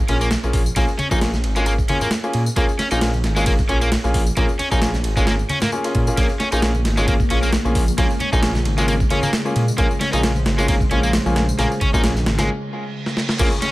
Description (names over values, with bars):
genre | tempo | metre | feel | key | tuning
breakbeat, breaks | 133 BPM | 4/4 | swing 54% on 16ths | Bb minor | A4 = 440 Hz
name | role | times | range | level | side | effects
dark detuned saw bass | bass | 0.0-13.5 s | Ab1 to Bb2 | -21 LUFS | equal | none
overdriven semi-hollow guitar | riff | 0.1-13.7 s | Ab3 to Eb4 | -24 LUFS | equal | vintage 12-bit sampler grit, digital delay
bright grand piano | stabs | 0.1-13.5 s | Bb3 to Ab4 | -24 LUFS | left 1 dB | digital delay
breakbeat sampler-style drum kit | drums | 0.1-13.7 s | crash cymbal, hi-hat, kick drum, ride cymbal, snare drum | -21 LUFS | equal | studio reverb
tambourine | drums | 0.2-13.6 s | none | -34 LUFS | left 3 dB | studio reverb
congas | percussion | 1.0-13.7 s | none | -30 LUFS | left 1 dB | none
warbly tape-like pad | sustained chords | 6.7-13.7 s | Db3 to C5 | -27 LUFS | left 1 dB | chorus, built-in reverb, vintage 12-bit sampler grit, sidechain pumping
reverse cymbal and downlifter | sound effects | 12.7-13.7 s | none | -31 LUFS | right 4 dB | none
room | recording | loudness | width
little or no reverb | none | -16 LUFS | side -18 dB against mid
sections
0.0-13.4 A section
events
break 12.5-13.4; reverse cymbal 12.7-13.4; drum fill 13.1-13.4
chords
0.0 Bbm7